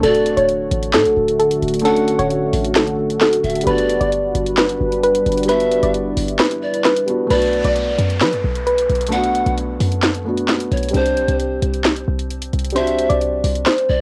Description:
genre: hip hop, trap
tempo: 132 BPM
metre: 4/4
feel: half-time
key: B minor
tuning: A4 = 439 Hz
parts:
  - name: soft round pluck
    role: melody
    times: 0.0-9.1, 12.8-14.0 s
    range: A4 to D5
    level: -20 LUFS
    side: equal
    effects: chorus, cassette tape, tape echo
  - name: breathy polished pan flute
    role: second line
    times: 0.0-14.0 s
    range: C5 to F#5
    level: -26 LUFS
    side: equal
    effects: cassette tape, tape echo
  - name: felt-muted upright piano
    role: accompaniment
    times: 0.0-14.0 s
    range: G3 to G4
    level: -26 LUFS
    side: equal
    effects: cassette tape
  - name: dark analog pad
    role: sustained chords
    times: 0.0-7.3 s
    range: D3 to B4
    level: -26 LUFS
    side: equal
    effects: chorus, cassette tape
  - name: short 808-style bass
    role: bass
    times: 0.0-14.0 s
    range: D1 to F#3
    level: -25 LUFS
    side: equal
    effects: none
  - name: trap drum kit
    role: drums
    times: 0.0-13.9 s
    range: handclaps, hi-hat, snare drum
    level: -23 LUFS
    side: equal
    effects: overdrive, cassette tape
  - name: downlifter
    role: sound effects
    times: 7.3-10.9 s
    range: none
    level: -36 LUFS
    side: equal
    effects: none
room: light reverb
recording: home recording on cassette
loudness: -18 LUFS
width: mono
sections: 0.0-7.3 A section; 7.3-14.0 B section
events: kick muted 6.4-7.3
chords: 0.0 Dmaj7; 3.7 Gmaj7; 7.3 Bm7; 10.9 Csus2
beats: | 0.03 0.49 0.94 1.40 | 1.85 2.31 2.76 3.21 | 3.67 4.12 4.58 5.03 | 5.49 5.94 6.40 6.85 | 7.30 7.76 8.21 8.67 | 9.12 9.58 10.03 10.49 | 10.94 11.40 11.85 12.30 | 12.76 13.21 13.67

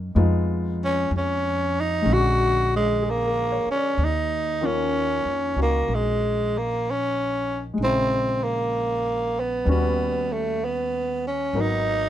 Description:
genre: jazz ballad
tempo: 63 BPM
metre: 4/4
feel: swing 66% on 8ths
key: Eb minor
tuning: A4 = 440 Hz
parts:
  - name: warm grand piano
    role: accompaniment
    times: 0.0-12.1 s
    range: Db3 to D5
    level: -29 LUFS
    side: left 2 dB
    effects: none
  - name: upright bass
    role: bass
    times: 0.0-12.1 s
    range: Ab1 to Gb2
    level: -26 LUFS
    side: equal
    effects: none
  - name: growling tenor saxophone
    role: melody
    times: 0.8-12.1 s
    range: Ab3 to F#4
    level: -23 LUFS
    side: right 1 dB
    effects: none
room: light reverb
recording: minimal, uncompressed stereo recording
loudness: -21 LUFS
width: side -12 dB against mid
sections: 0.0-4.0 A section; 4.0-12.1 B section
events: tenor saxophone solo 0.0-4.0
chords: 0.2 Fm7b5; 2.1 Bb7alt; 4.0 Ebm9; 7.8 Bbm7b5; 9.6 Eb7alt; 11.5 Abm7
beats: | 0.15 1.10 2.05 3.02 | 3.97 4.93 5.88 6.82 | 7.76 8.70 9.64 10.59 | 11.53

